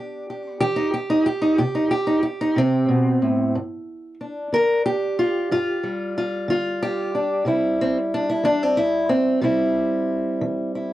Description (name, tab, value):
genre	acoustic country blues, solo or duo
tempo	61 BPM (dotted quarters)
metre	12/8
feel	straight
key	C major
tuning	A4 = 439 Hz
part	fingerpicked steel-string acoustic guitar	solo	0.0-10.9 s	G2 to Bb4	-19 LUFS	equal	cassette tape
room	light reverb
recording	home recording on cassette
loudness	-19 LUFS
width	side -14 dB against mid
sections	0.0-7.5 A section; 7.5-10.9 B section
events	steel-string acoustic guitar solo 7.5-10.9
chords	0.0 C; 3.5 G5; 7.5 C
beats	0.61 1.59 2.57 | 3.55 4.53 5.51 6.49 | 7.47 8.45 9.43 10.41